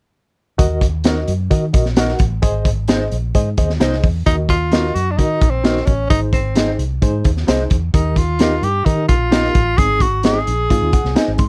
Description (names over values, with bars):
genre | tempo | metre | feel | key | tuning
uptempo 1960s-style soul | 130 BPM | 4/4 | straight | Eb dorian | A4 = 442 Hz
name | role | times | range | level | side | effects
reed electric piano | accompaniment | 0.6-11.5 s | Ab2 to C6 | -25 LUFS | equal | fast tremolo
vintage muted fingered electric bass | bass | 0.6-11.5 s | Ab1 to Eb3 | -22 LUFS | equal | none
crunchy breakbeat drum kit | drums | 0.6-11.5 s | hi-hat, kick drum, snare drum | -19 LUFS | equal | none
mellow electric guitar | stabs | 1.0-11.3 s | Eb4 to Eb5 | -24 LUFS | equal | lush chorus
warm tenor saxophone | melody | 4.3-11.4 s | C4 to Ab4 | -22 LUFS | equal | none
room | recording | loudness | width
little or no reverb | dark, warm production | -16 LUFS | mono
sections
0.6-4.3 A section; 4.3-11.5 B section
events
reed electric piano fill 10.7-11.5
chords
0.6 Ebm; 2.4 Ab; 4.3 Ebm; 6.1 Ab; 7.9 Eb; 9.8 Ab